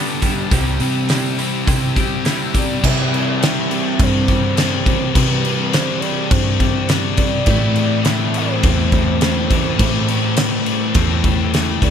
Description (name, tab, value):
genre	rock, shoegaze and dream pop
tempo	104 BPM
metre	4/4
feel	straight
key	C major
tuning	A4 = 438 Hz
part	twangy electric guitar	arpeggios	0.0-11.9 s	G3 to A4	-30 LUFS	left 9 dB	analog chorus, tape echo
part	crunchy overdriven guitar	riff	0.0-11.9 s	G2 to C4	-24 LUFS	left 1 dB	spring reverb
part	raw garage guitar	riff	0.0-11.9 s	A2 to G4	-26 LUFS	right 10 dB	overdrive, reverse reverb
part	thick fuzz guitar	riff	0.0-11.9 s	G2 to C4	-23 LUFS	left 11 dB	distortion, ensemble chorus
part	loose indie drum kit	drums	0.2-11.9 s	crash cymbal, hi-hat, kick drum, snare drum	-18 LUFS	equal	none
part	vintage muted fingered electric bass	bass	0.5-11.9 s	C2 to C3	-21 LUFS	equal	none
part	pure breathy sine lead	melody	2.6-11.9 s	B4 to E5	-27 LUFS	right 3 dB	chorus, tape echo
room	light reverb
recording	none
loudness	-14 LUFS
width	side -8 dB against mid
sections	0.0-2.8 A section; 2.8-11.9 B section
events	none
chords	0.0 Gadd9; 0.5 C; 2.8 Cmaj7; 7.5 Am7